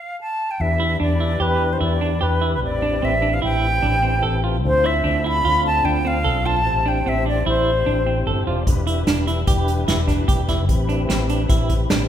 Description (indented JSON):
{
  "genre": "progressive instrumental, band music in an uneven meter",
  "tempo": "149 BPM",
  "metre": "5/4",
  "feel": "straight",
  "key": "unclear",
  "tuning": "A4 = 440 Hz",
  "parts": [
    { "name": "silver concert flute", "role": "melody", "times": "0.0-8.2 s", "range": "B4 to B5", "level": "-21 LUFS", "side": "equal", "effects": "none" },
    { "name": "tonewheel organ", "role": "accompaniment", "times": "0.6-12.1 s", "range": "C4 to G5", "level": "-28 LUFS", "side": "left 2 dB", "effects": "chorus vibrato, slow rotary speaker" },
    { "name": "fretless electric bass", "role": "bass", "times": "0.6-12.1 s", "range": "E1 to E2", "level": "-22 LUFS", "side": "left 1 dB", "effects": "none" },
    { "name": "clean electric guitar", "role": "arpeggios", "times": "0.8-12.0 s", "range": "C4 to A4", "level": "-25 LUFS", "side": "right 4 dB", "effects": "tremolo" },
    { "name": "unplugged drum kit", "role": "drums", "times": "8.7-12.0 s", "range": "hi-hat, kick drum, snare drum", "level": "-21 LUFS", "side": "equal", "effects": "none" }
  ],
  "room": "moderate scoring stage reverb, RT60 1.9 s",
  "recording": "recorded in a church or concert hall",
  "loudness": "-17 LUFS",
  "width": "side -10 dB against mid",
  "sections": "0.6-12.1 A section",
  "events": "stop 0.0-0.6; tonewheel organ fill 8.1-8.7",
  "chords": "0.0 N.C.; 0.6 Em7; 2.6 Am7; 4.6 Dm9; 6.7 Am7; 8.7 Em7; 10.7 Am7"
}